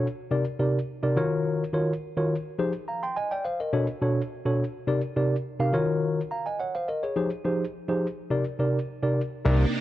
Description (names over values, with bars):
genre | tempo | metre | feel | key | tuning
funk | 105 BPM | 4/4 | straight | C minor | A4 = 438 Hz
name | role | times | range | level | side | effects
mellow tine electric piano | accompaniment | 0.0-9.6 s | B2 to C6 | -25 LUFS | equal | auto-pan
string machine, violins | sustained chords | 9.4-9.8 s | C3 to Eb4 | -28 LUFS | right 3 dB | ensemble chorus
fat analog bass | bass | 9.5-9.7 s | C2 | -20 LUFS | equal | none
room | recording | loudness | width
light reverb | none | -24 LUFS | side -14 dB against mid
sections
0.0-9.5 A section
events
none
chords
0.3 Cm9; 1.2 Ebm9; 2.6 Fm9; 3.7 Bm9; 4.9 Cm9; 5.7 Ebm9; 7.2 Fm9; 8.3 Cm9